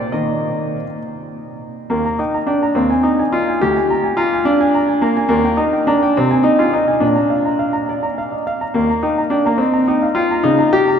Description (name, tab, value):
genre	classical-period piano sonatina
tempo	70 BPM (dotted quarters)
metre	6/8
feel	straight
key	Eb major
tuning	A4 = 435 Hz
part	clear grand piano	solo	0.0-11.0 s	D2 to Bb5	-14 LUFS	equal	none
room	wet cathedral reverb, RT60 5.5 s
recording	in a vast, echoing space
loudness	-14 LUFS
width	side -7 dB against mid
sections	0.0-1.9 A section; 1.9-11.0 B section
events	none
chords	0.1 Eb5; 1.9 Eb; 2.8 Ab5/Eb; 3.6 Bb7/D; 5.3 Eb; 6.2 Ab/C; 7.0 Bb; 8.7 Eb; 10.5 Eb7/Db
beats	| 0.14 1.02 | 1.90 2.76 | 3.61 4.46 | 5.30 6.15 | 7.01 7.88 | 8.75 9.61 | 10.46